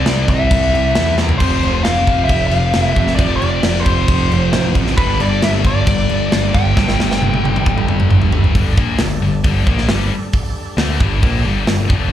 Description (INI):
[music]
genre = hard rock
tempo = 134 BPM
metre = 4/4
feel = straight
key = unclear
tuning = A4 = 440 Hz
[part]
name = nasal lead guitar with a parked wah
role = melody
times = 0.0-8.1 s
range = B4 to G5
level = -20 LUFS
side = left 1 dB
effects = overdrive, slapback echo, plate reverb
[part]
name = overdriven tonewheel organ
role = sustained chords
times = 0.0-12.1 s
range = F3 to D5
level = -31 LUFS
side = right 1 dB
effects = slow rotary speaker, chorus vibrato, plate reverb
[part]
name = scooped high-gain guitar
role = riff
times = 0.0-12.1 s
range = F2 to D4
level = -20 LUFS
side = left 7 dB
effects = distortion, slapback echo
[part]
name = sludgy distorted guitar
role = riff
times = 0.0-8.6 s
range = F2 to C4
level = -22 LUFS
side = right 10 dB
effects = overdrive
[part]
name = growling picked electric bass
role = bass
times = 0.0-12.1 s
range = F1 to E2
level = -18 LUFS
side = equal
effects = overdrive
[part]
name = tight metal drum kit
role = drums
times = 0.1-12.0 s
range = crash cymbal, hi-hat, kick drum, snare drum, toms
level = -17 LUFS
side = equal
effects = none
[sound]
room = light reverb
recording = live gig heard through the venue's PA, club reverb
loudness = -13 LUFS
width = side -11 dB against mid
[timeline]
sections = 0.0-8.6 A section; 8.6-12.1 B section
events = drum fill 1.2, 6.8-8.6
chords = 0.0 C; 1.4 F5; 5.0 G5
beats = 0.05 0.50 0.95 | 1.40 1.85 2.29 2.74 | 3.19 3.64 4.09 4.54 | 4.99 5.43 5.88 6.33 | 6.77 7.22 7.67 8.11 | 8.56 9.00 9.45 9.89 | 10.34 10.79 11.23 11.68